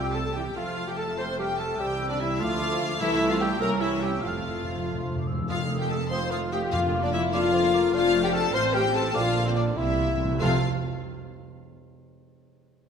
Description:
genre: quick classical-period movement for symphony orchestra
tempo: 97 BPM (dotted quarters)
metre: 6/8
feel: straight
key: F major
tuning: A4 = 440 Hz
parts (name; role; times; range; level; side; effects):
- warm studio violin section; melody; 0.0-10.6 s; C5 to C6; -32 LUFS; left 4 dB; none
- dark studio violin section; second line; 0.0-10.6 s; C4 to C5; -32 LUFS; left 5 dB; none
- mellow clarinet; second line; 0.0-10.6 s; A3 to C5; -36 LUFS; left 1 dB; none
- mellow cor anglais; second line; 0.0-10.6 s; C4 to C5; -34 LUFS; right 2 dB; none
- mellow hollow large flute ensemble; second line; 0.0-10.6 s; A5 to F6; -37 LUFS; right 1 dB; none
- mellow bassoon; accompaniment; 0.0-10.6 s; C3 to F4; -34 LUFS; right 2 dB; none
- mellow French horn section; sustained chords; 0.0-10.6 s; D3 to C5; -30 LUFS; left 4 dB; none
- dark studio cello section; bass; 0.0-10.6 s; C2 to C3; -34 LUFS; right 5 dB; none
- warm studio double bass section; bass; 0.0-10.6 s; F1 to D2; -34 LUFS; right 4 dB; none
- dark studio viola section; accompaniment; 0.4-10.6 s; D3 to Db4; -36 LUFS; right 3 dB; none
- timpani; percussion; 3.0-7.3, 9.8-10.6 s; F2 to C3; -32 LUFS; right 1 dB; none
room: wet concert hall reverb, RT60 1.9 s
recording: none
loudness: -23 LUFS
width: side -7 dB against mid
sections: 0.0-5.5 A section; 5.5-10.4 B section; 10.4-11.7 C section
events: timpani fill 4.2-5.5, 9.8-10.4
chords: 0.0 C; 0.6 F; 1.8 C; 2.4 Dm; 3.0 Am/C; 3.6 C; 4.2 F; 5.5 F7; 6.7 Bb/F; 7.9 F; 8.5 F/A (rootless); 9.2 Bb; 9.8 C7; 10.4 F

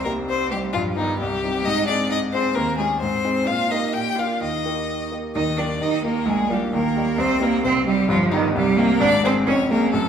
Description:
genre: quick classical-period movement for piano trio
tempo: 131 BPM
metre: 2/4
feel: straight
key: Eb major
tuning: A4 = 440 Hz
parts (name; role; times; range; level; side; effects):
- rich violin; melody; 0.0-10.1 s; Eb4 to G5; -24 LUFS; left 5 dB; none
- clear cello; second line; 0.0-10.1 s; Eb3 to G4; -22 LUFS; right 4 dB; none
- clear grand piano; accompaniment; 0.0-10.1 s; F1 to Ab4; -24 LUFS; left 1 dB; none
room: wet recital hall reverb, RT60 1.6 s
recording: recorded in a church or concert hall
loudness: -19 LUFS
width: side -8 dB against mid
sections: 0.0-5.3 A section; 5.3-10.1 A section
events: none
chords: 0.0 Cm; 0.7 G7; 1.2 Cm; 1.7 Ab; 2.6 Eb7; 3.0 Ab; 3.5 Eb/Bb; 3.9 Bb; 4.4 Eb; 6.3 Bb7; 6.7 Eb; 7.2 Cm; 8.1 G7; 8.6 Cm; 9.0 Ab; 9.5 Db/F

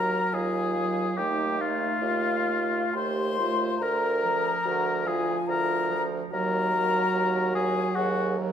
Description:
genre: classical, slow romantic movement for wind quintet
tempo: 62-74 BPM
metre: 3/4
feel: rubato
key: Eb minor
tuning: A4 = 440 Hz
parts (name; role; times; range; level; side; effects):
- mellow concert flute; melody; 0.0-8.4 s; F5 to C6; -30 LUFS; left 6 dB; none
- warm oboe; second line; 0.0-8.4 s; F4 to C5; -29 LUFS; left 2 dB; none
- clear clarinet; accompaniment; 0.0-8.5 s; F3 to A3; -34 LUFS; right 5 dB; none
- warm French horn; accompaniment; 0.0-8.5 s; Eb4 to Bb4; -30 LUFS; right 2 dB; none
- clear bassoon; bass; 0.0-8.5 s; D2 to Eb2; -31 LUFS; right 3 dB; none
room: moderate recital hall reverb, RT60 1.4 s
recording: minimal, uncompressed stereo recording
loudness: -24 LUFS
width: side -8 dB against mid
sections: 0.0-8.5 A section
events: none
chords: 0.0 Ebm; 1.2 F7/Eb; 3.8 Bb/D; 6.3 Ebm

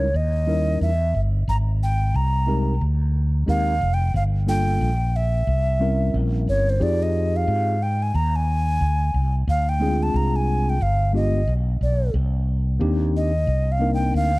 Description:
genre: hip hop, jazz-hop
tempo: 90 BPM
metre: 4/4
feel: swing 61% on 16ths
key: unclear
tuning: A4 = 440 Hz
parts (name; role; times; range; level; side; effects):
- breathy alto ocarina; melody; 0.0-14.4 s; C5 to Bb5; -25 LUFS; equal; none
- mellow tine electric piano; accompaniment; 0.0-14.3 s; G3 to Bb4; -26 LUFS; left 1 dB; fast stereo tremolo
- fretless electric bass; bass; 0.0-14.4 s; F1 to Ab2; -21 LUFS; equal; none
room: small room ambience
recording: dark, warm production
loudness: -19 LUFS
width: side -21 dB against mid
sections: 0.0-14.4 A section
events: ocarina solo 0.0-14.4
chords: 0.1 Eb7b9; 1.5 Abmaj9; 4.1 Gm7; 5.5 C7b9; 6.8 Fm9; 9.5 Dm7b5; 10.8 G7b9; 12.1 Cm7

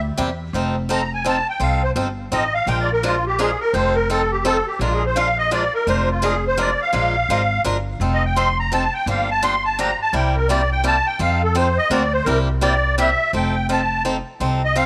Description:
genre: acoustic string swing (jazz manouche)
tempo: 169 BPM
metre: 3/4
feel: swing 62% on 8ths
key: F mixolydian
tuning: A4 = 438 Hz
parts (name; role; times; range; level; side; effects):
- upright bass; bass; 0.0-14.9 s; F1 to F2; -25 LUFS; equal; none
- picked swing-style acoustic guitar; accompaniment; 0.2-14.9 s; C3 to Bb4; -26 LUFS; equal; none
- musette accordion; melody; 0.9-14.9 s; F4 to C6; -22 LUFS; equal; none
room: light reverb, studio ambience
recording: none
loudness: -19 LUFS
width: mono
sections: 0.5-13.3 A section; 13.3-14.9 A section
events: accordion solo 0.5-14.9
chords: 0.0 C7; 0.5 F7; 2.7 Bb7; 3.7 F7; 4.8 Bb7; 8.0 F7; 9.1 Gm7; 10.1 C7; 11.2 F7; 11.9 Daug7; 12.3 C7; 13.3 F7

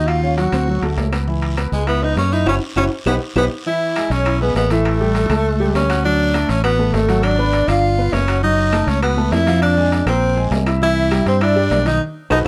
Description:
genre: Afro-Cuban jazz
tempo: 201 BPM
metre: 4/4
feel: straight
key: C# minor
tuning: A4 = 441 Hz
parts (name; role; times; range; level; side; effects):
- breathy tenor saxophone; melody; 0.0-12.4 s; G#3 to F#4; -22 LUFS; equal; plate reverb
- breathy mellow jazz flute; second line; 0.0-12.4 s; G#4 to F#5; -28 LUFS; equal; none
- warm baby grand piano; accompaniment; 0.0-12.5 s; D#3 to F#6; -25 LUFS; equal; none
- fingered electric bass; bass; 0.0-12.5 s; F#1 to G2; -21 LUFS; equal; none
- claves; percussion; 0.1-12.4 s; none; -36 LUFS; equal; none
- guiro; percussion; 0.1-12.4 s; none; -39 LUFS; equal; none
- timbales; percussion; 0.1-12.5 s; none; -28 LUFS; equal; none
room: light reverb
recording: dark, warm production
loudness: -17 LUFS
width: mono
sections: 0.0-3.7 A section; 3.7-12.5 B section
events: band accent 2.5-3.7, 12.0-12.5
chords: 0.1 D#m13; 0.7 D; 1.3 C#m7; 2.5 F#5; 3.1 Baug; 3.7 E; 4.9 A7; 6.0 D; 7.2 G#m7b5; 7.8 G7; 8.4 F#m7; 9.6 Fm; 10.2 A#sus2; 10.8 Cmaj7

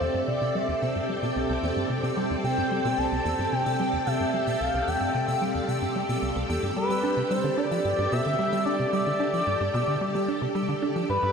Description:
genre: ambient, sequencer-driven space music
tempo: 111 BPM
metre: 4/4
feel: straight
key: unclear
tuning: A4 = 441 Hz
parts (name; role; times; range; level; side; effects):
- expressive synth lead; melody; 0.0-11.3 s; B4 to A5; -28 LUFS; equal; chorus, analog delay
- string machine, full ensemble; sustained chords; 0.0-11.3 s; C4 to G5; -28 LUFS; right 1 dB; ensemble chorus
- tight sequencer bass; riff; 0.0-11.3 s; C2 to D4; -29 LUFS; equal; wide subtle chorus, analog delay
- pulsing gated texture; texture; 0.0-11.3 s; E6; -40 LUFS; right 1 dB; chorus, built-in reverb
room: wet plate reverb, RT60 3.1 s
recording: echo-heavy mix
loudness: -24 LUFS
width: side -6 dB against mid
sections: 0.0-11.3 A section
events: none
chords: 0.0 C6; 6.8 Gsus2

